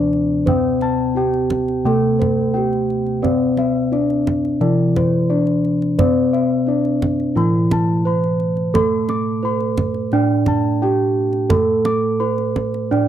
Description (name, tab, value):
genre	Javanese gamelan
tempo	87 BPM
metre	4/4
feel	straight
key	unclear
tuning	A4 = 439 Hz
part	gamelan-type bronze metallophone	melody	0.0-13.1 s	C4-40c to D5	-20 LUFS	left 1 dB	none
part	gamelan-type bronze metallophone	accompaniment	0.0-13.1 s	E3+40c to D4	-21 LUFS	right 4 dB	none
part	gamelan-type bossed gongs	arpeggios	0.0-13.1 s	C5-40c to D6	-26 LUFS	left 5 dB	none
part	gamelan-type bossed gongs	bass	0.0-13.1 s	A2+20c to C5-40c	-22 LUFS	equal	none
part	kendang	percussion	0.1-13.0 s	none	-22 LUFS	right 2 dB	none
room	light reverb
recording	dry, close 1970s-style studio recording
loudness	-16 LUFS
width	side -10 dB against mid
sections	0.0-13.1 A section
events	none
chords	none